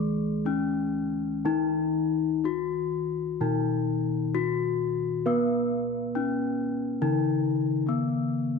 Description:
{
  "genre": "Javanese gamelan",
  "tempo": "60-73 BPM",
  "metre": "4/4",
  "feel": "straight",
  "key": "unclear",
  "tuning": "A4 = 440 Hz",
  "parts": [
    { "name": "gamelan-type bronze metallophone", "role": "melody", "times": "0.0-8.6 s", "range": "Cb4-45c to Ab4+25c", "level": "-28 LUFS", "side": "left 10 dB", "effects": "none" },
    { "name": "gamelan-type bronze metallophone", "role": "accompaniment", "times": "0.0-8.6 s", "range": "Eb3+30c to Cb4-45c", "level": "-31 LUFS", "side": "right 2 dB", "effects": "none" },
    { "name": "gamelan-type bossed gongs", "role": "bass", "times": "0.0-8.6 s", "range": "Cb3-45c to Cb5-45c", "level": "-31 LUFS", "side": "right 2 dB", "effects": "none" }
  ],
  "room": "moderate echo chamber reverb, RT60 2.2 s",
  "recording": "none",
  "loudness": "-25 LUFS",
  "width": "side -5 dB against mid",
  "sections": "0.0-8.6 A section",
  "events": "none",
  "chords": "none"
}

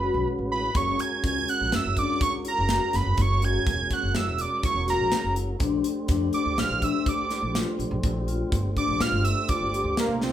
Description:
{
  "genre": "progressive instrumental, band music in an uneven meter",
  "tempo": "124 BPM",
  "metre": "5/4",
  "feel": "straight",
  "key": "unclear",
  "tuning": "A4 = 438 Hz",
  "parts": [
    { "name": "fat analog lead", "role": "melody", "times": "0.0-10.3 s", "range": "Bb3 to G#6", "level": "-26 LUFS", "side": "right 3 dB", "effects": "none" },
    { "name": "percussive tonewheel organ", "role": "accompaniment", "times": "0.0-10.3 s", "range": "G#3 to C5", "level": "-32 LUFS", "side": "right 1 dB", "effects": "slow rotary speaker" },
    { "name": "vibraphone with soft mallets", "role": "arpeggios", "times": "0.0-10.3 s", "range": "C#4 to G4", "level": "-31 LUFS", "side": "left 6 dB", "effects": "none" },
    { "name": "upright bass", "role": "bass", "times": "0.0-10.3 s", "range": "E1 to Bb2", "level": "-28 LUFS", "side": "equal", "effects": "none" },
    { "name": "modern studio drum kit", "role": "drums", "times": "0.7-10.3 s", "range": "hi-hat, kick drum, snare drum", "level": "-29 LUFS", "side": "equal", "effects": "none" }
  ],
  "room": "moderate large studio reverb, RT60 1.2 s",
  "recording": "band playing live in one room",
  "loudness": "-23 LUFS",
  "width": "side -11 dB against mid",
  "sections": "0.0-10.3 A section",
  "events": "none",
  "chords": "0.0 Asus2; 0.8 F#; 5.6 Bb"
}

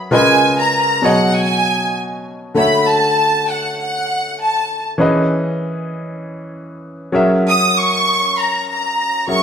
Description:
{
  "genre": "soul",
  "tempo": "98 BPM",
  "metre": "4/4",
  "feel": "swing 54% on 16ths",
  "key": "unclear",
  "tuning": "A4 = 440 Hz",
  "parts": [
    { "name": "clear baby grand piano", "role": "accompaniment", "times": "0.0-9.4 s", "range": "B2 to E5", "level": "-17 LUFS", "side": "equal", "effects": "none" },
    { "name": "clear studio violin section", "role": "melody", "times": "0.1-9.4 s", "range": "F#5 to D#6", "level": "-15 LUFS", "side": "equal", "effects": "none" }
  ],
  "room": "wet stone room reverb, RT60 1.3 s",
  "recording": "band playing live in one room",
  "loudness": "-13 LUFS",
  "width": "side -8 dB against mid",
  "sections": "0.0-2.6 A section; 2.6-9.4 B section",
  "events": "none",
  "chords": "0.1 C#13; 1.0 B69; 2.6 Dmaj7; 5.0 C#m9/E; 7.1 F#9"
}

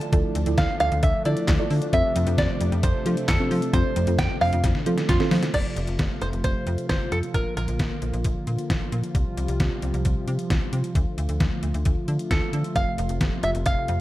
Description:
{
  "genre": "synth-pop",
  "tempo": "133 BPM",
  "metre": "4/4",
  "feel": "straight",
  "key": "F major",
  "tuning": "A4 = 440 Hz",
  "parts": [
    { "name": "open-back banjo", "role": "melody", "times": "0.0-8.9, 12.3-14.0 s", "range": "F4 to A5", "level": "-27 LUFS", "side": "right 1 dB", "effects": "analog delay" },
    { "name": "brassy analog pad", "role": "sustained chords", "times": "0.0-14.0 s", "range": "C3 to F4", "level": "-30 LUFS", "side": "equal", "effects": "chorus" },
    { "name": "detuned 8-bit digital drum machine", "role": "drums", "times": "0.0-14.0 s", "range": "crash cymbal, handclaps, hi-hat, kick drum, snare drum", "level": "-25 LUFS", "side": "equal", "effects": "none" },
    { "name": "muted felt-like synth keys", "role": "accompaniment", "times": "0.1-5.4 s", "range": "C4 to D5", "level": "-29 LUFS", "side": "right 1 dB", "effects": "chorus, phaser, analog delay" },
    { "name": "slap-like FM bass", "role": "bass", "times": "0.1-14.0 s", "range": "F1 to F3", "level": "-25 LUFS", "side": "equal", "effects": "none" }
  ],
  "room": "light reverb",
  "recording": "echo-heavy mix",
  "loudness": "-21 LUFS",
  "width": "side -16 dB against mid",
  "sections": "0.0-5.5 A section; 5.5-14.0 B section",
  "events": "drum fill 4.6-5.5",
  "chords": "0.0 Dmadd9; 1.9 F; 7.3 Bb; 9.1 Csus4; 11.0 Dm; 12.8 F"
}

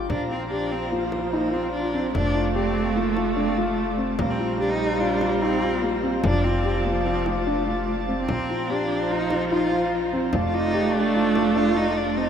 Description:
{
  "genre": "contemporary instrumental, chamber music in an uneven meter",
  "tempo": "147 BPM",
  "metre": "5/4",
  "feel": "straight",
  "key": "unclear",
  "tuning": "A4 = 440 Hz",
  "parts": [
    { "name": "pedal harmonium", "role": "sustained chords", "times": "0.0-12.3 s", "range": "F4 to Bb5", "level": "-31 LUFS", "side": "right 2 dB", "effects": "none" },
    { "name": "dark baby grand piano", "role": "arpeggios", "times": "0.0-12.3 s", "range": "C4 to G4", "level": "-27 LUFS", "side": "left 3 dB", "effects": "none" },
    { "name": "upright bass", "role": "bass", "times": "0.0-12.3 s", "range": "F1 to Bb1", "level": "-32 LUFS", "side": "equal", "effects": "none" },
    { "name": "rich cello", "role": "melody", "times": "0.1-12.3 s", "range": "A3 to F4", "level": "-27 LUFS", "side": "equal", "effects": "none" },
    { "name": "dark viola", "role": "second line", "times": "0.1-12.3 s", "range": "F3 to A3", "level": "-26 LUFS", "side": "right 4 dB", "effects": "none" },
    { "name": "frame drum", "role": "percussion", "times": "0.1-11.5 s", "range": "none", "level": "-31 LUFS", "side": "left 2 dB", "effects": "none" }
  ],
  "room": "wet huge ambient reverb, RT60 7.7 s",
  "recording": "in a vast, echoing space",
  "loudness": "-21 LUFS",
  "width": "side -8 dB against mid",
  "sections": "0.1-12.3 A section",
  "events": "none",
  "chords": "0.1 Bbsus2; 2.1 F6; 4.2 Bbsus2; 6.2 F6; 8.3 Bbsus2; 10.3 F6"
}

